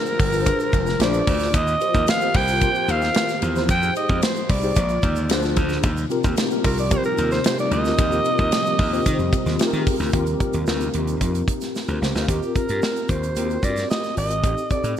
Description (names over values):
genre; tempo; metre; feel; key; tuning
polished 1980s jazz-funk pop; 112 BPM; 4/4; straight; Eb major; A4 = 440 Hz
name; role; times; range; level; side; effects
breathy alto saxophone; melody; 0.0-15.0 s; G4 to G5; -24 LUFS; right 1 dB; none
mellow tine electric piano; accompaniment; 0.0-15.0 s; C4 to F5; -26 LUFS; left 2 dB; medium stereo tremolo, ensemble chorus
hollow soft pad; sustained chords; 0.0-12.3 s; C3 to Bb4; -31 LUFS; left 1 dB; ensemble chorus
tube shaker; percussion; 0.1-15.0 s; none; -42 LUFS; right 9 dB; none
gritty slap bass; bass; 0.2-14.9 s; F1 to Eb3; -24 LUFS; equal; overdrive
modern studio drum kit; drums; 0.2-15.0 s; hi-hat, kick drum, ride cymbal, snare drum; -23 LUFS; equal; gated reverb
room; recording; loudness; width
light reverb, small room ambience; none; -18 LUFS; side -10 dB against mid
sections
0.0-10.1 A section; 10.1-12.3 B section; 12.3-15.0 C section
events
drum fill 11.7-12.3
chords
0.0 Bb7; 1.5 Eb69; 3.7 Fm9; 4.8 Bb7; 5.8 Eb69; 12.3 Eb6; 14.4 Am7b5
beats
0.47 1.00 | 1.54 2.08 2.62 3.15 | 3.69 4.23 4.76 5.30 | 5.84 6.38 6.91 7.45 | 7.99 8.52 9.06 9.60 | 10.13 10.67 11.21 11.75 | 12.28 12.82 13.36 13.90 | 14.44 14.97